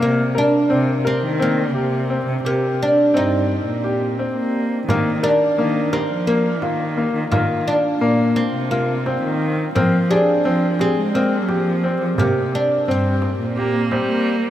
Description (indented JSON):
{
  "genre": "contemporary instrumental, chamber music in an uneven meter",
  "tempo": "172 BPM (eighths)",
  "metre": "7/8",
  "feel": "straight",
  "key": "C minor",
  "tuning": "A4 = 439 Hz",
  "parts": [
    { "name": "oud", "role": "melody", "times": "0.0-14.2 s", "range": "Bb3 to Eb4", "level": "-21 LUFS", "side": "right 1 dB", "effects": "none" },
    { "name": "clear baby grand piano", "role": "arpeggios", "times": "0.0-14.3 s", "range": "Bb3 to Bb4", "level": "-21 LUFS", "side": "left 2 dB", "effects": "none" },
    { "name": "muted cello", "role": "bass", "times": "0.0-14.5 s", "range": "G2 to Bb3", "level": "-22 LUFS", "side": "equal", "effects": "none" },
    { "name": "frame drum", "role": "percussion", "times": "4.9-14.2 s", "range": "none", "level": "-26 LUFS", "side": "right 2 dB", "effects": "none" },
    { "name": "bright viola", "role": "second line", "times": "13.6-14.5 s", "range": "G3 to Bb3", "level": "-22 LUFS", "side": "right 4 dB", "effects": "none" }
  ],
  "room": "wet huge ambient reverb, RT60 8.0 s",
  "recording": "in a vast, echoing space",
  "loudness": "-16 LUFS",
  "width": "side -12 dB against mid",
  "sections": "0.0-14.5 A section",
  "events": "none",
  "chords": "0.0 Cm7; 4.9 Ebsus2; 9.8 Fm; 12.2 C5",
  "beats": "| 0.00 0.35 0.70 1.05 1.40 1.75 2.10 | 2.44 2.79 3.14 3.49 3.84 4.19 4.54 | 4.88 5.23 5.58 5.93 6.28 6.62 6.97 | 7.32 7.67 8.02 8.36 8.71 9.06 9.41 | 9.75 10.10 10.45 10.79 11.14 11.49 11.84 | 12.18 12.53 12.88 13.22 13.57 13.92 14.26"
}